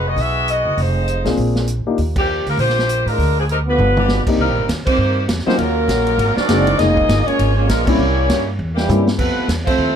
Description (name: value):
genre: jazz, big band swing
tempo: 200 BPM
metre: 4/4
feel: swing 60% on 8ths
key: Eb major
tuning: A4 = 440 Hz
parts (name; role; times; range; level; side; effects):
- warm saxophone section; melody; 0.0-10.0 s; E3 to E5; -19 LUFS; left 1 dB; none
- upright bass; bass; 0.0-10.0 s; F1 to A2; -19 LUFS; equal; none
- vintage drum kit; drums; 0.2-9.7 s; crash cymbal, hi-hat, kick drum, ride cymbal, snare drum, toms; -23 LUFS; right 1 dB; none
- warm concert grand piano; accompaniment; 1.2-2.0, 4.3-9.1 s; F#3 to Ab4; -20 LUFS; left 4 dB; none
- bright trombone section; second line; 3.7-10.0 s; Bb2 to Eb4; -21 LUFS; right 4 dB; none
room: light reverb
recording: none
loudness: -14 LUFS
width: side -8 dB against mid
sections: 0.0-4.4 A section; 4.4-10.0 B section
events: band accent 2.1, 4.8, 7.8, 9.6; drum fill 3.8, 8.6-9.2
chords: 0.0 Emaj9; 0.8 Fm7; 1.4 Bb7; 2.0 Ebmaj9; 3.2 Dm7b5; 3.8 G7; 4.4 Cm7; 5.6 Ebm9; 6.2 Ab9; 6.8 Db69; 8.0 C7b9; 9.2 Fmaj7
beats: 0.17 0.48 | 0.78 1.08 1.38 1.68 | 1.98 2.28 2.58 2.88 | 3.18 3.48 3.78 4.08 | 4.38 4.68 4.99 5.29 | 5.59 5.89 6.19 6.49 | 6.79 7.09 7.39 7.69 | 7.99 8.29 8.59 8.89 | 9.19 9.49 9.79